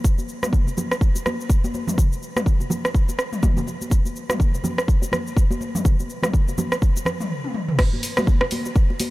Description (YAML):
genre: house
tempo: 124 BPM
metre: 4/4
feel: swing 58% on 16ths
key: none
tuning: none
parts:
  - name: electronic kick drum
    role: drums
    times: 0.0-8.9 s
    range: none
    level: -18 LUFS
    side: equal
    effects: none
  - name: house drum kit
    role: drums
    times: 0.0-9.1 s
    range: cabasa, crash cymbal, hi-hat, rim click, toms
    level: -25 LUFS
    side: equal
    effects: none
  - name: congas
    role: percussion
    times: 0.0-9.1 s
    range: none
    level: -28 LUFS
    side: equal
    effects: none
room: light reverb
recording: none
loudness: -19 LUFS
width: side -18 dB against mid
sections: 0.0-7.8 A section; 7.8-9.1 B section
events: stop 7.3-7.8; drum fill 7.4-7.8; drop 7.8-9.1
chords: none